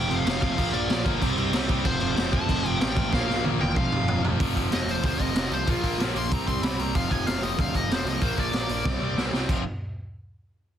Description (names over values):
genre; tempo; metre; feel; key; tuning
punk rock; 188 BPM; 4/4; straight; unclear; A4 = 440 Hz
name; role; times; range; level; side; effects
smooth overdriven lead guitar; melody; 0.0-9.3 s; F4 to C6; -30 LUFS; left 1 dB; none
distorted electric guitar; riff; 0.0-9.6 s; F2 to C4; -30 LUFS; left 11 dB; overdrive
overdriven semi-hollow guitar; riff; 0.0-9.6 s; F2 to C4; -30 LUFS; right 18 dB; none
fuzz picked electric bass; bass; 0.0-9.6 s; E1 to D2; -32 LUFS; equal; overdrive
raw garage drum kit; drums; 0.1-9.6 s; crash cymbal, hi-hat, kick drum, snare drum, toms; -26 LUFS; equal; none
room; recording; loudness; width
little or no reverb; dense, heavily limited modern master; -22 LUFS; side -10 dB against mid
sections
0.0-4.4 A section; 4.4-9.5 B section; 9.5-10.8 C section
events
drum fill 3.1-4.4, 8.9-9.5; lead electric guitar solo 4.4-9.5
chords
0.0 F5; 0.6 Bb; 1.2 C5; 1.9 F; 3.1 Bb5; 3.8 F5; 5.7 Bb5; 6.3 C5; 6.9 F5; 8.2 Bb; 8.9 C5; 9.5 F5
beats
0.27 | 0.58 0.90 1.22 1.54 | 1.86 2.17 2.49 2.81 | 3.13 3.44 3.76 4.08 | 4.40 4.71 5.03 5.35 | 5.67 5.99 6.31 6.62 | 6.94 7.26 7.58 7.90 | 8.22 8.54 8.86 9.17 | 9.49